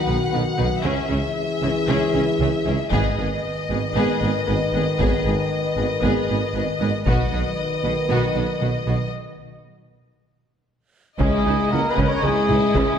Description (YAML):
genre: cinematic, epic orchestral film score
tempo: 116 BPM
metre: 4/4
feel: straight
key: unclear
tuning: A4 = 436 Hz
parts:
  - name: warm symphonic violin section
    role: melody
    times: 0.0-13.0 s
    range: D#5 to F#5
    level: -28 LUFS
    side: left 4 dB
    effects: none
  - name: rich studio violin section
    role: second line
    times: 0.0-13.0 s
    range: E4 to B4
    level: -30 LUFS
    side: left 5 dB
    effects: none
  - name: rich symphonic viola section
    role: accompaniment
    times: 0.0-13.0 s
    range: G#3 to E4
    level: -29 LUFS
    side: right 2 dB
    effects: none
  - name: dark French horn section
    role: sustained chords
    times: 0.0-13.0 s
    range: D#3 to B4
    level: -25 LUFS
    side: left 3 dB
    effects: none
  - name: rich symphonic cello section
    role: bass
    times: 0.1-12.8 s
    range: G#2 to C#3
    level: -28 LUFS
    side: right 3 dB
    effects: none
  - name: rich symphonic double bass section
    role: bass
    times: 0.1-12.8 s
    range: G#1 to C#2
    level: -28 LUFS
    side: right 3 dB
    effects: none
  - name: warm tuba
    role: bass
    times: 0.1-12.9 s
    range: G#1 to C#2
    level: -28 LUFS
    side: right 4 dB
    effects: none
  - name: taiko ensemble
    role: drums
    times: 2.9-7.5, 11.2-13.0 s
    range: none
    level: -26 LUFS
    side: equal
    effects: none
  - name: dark trumpet section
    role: stabs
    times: 11.2-13.0 s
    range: G#4 to C#5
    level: -22 LUFS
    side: right 1 dB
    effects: none
room: wet scoring stage reverb, RT60 1.8 s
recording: none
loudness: -19 LUFS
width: side -8 dB against mid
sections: 0.0-11.2 A section; 11.2-13.0 B section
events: build-up 0.0-11.2; break 9.1-11.2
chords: 0.0 B; 0.9 C#m; 2.9 G#m; 7.1 B; 9.1 N.C.; 11.2 C#madd9